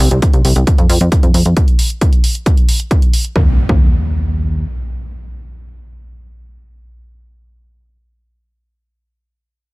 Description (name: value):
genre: uplifting trance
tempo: 134 BPM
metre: 4/4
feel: straight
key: unclear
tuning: A4 = 441 Hz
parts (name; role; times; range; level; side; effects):
- plucky analog bass; bass; 0.0-4.7 s; C2 to F2; -14 LUFS; equal; sidechain pumping
- electronic hi-hat; drums; 0.0-3.3 s; none; -21 LUFS; right 1 dB; none
- electronic kick drum; drums; 0.2-3.8 s; none; -11 LUFS; equal; none
- impact; sound effects; 3.4-7.7 s; none; -22 LUFS; equal; none
room: little or no reverb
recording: none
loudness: -11 LUFS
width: side -24 dB against mid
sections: 0.0-3.4 A section; 3.4-6.9 B section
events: none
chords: none